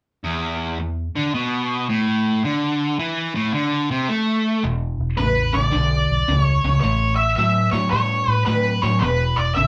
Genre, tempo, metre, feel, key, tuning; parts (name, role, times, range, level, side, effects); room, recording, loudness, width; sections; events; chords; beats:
rock; 109 BPM; 4/4; swing 65% on 8ths; A4 = 438 Hz
overdriven electric guitar; riff; 0.2-9.7 s; E2 to A3; -23 LUFS; equal
vintage muted fingered electric bass; bass; 4.6-9.7 s; E1 to A2; -25 LUFS; equal
octave-fuzz lead guitar; melody; 5.2-9.7 s; B4 to E5; -23 LUFS; equal; distortion
moderate small room reverb, RT60 0.5 s; band playing live in one room; -20 LUFS; mono
0.2-4.6 A section; 4.6-9.7 B section
0.2 E5; 2.4 A5; 4.6 E5; 6.8 A; 9.0 E5
| 0.23 0.78 1.34 1.89 | 2.44 2.99 3.54 4.09 | 4.64 5.18 5.73 6.28 | 6.83 7.38 7.92 8.47 | 9.02 9.56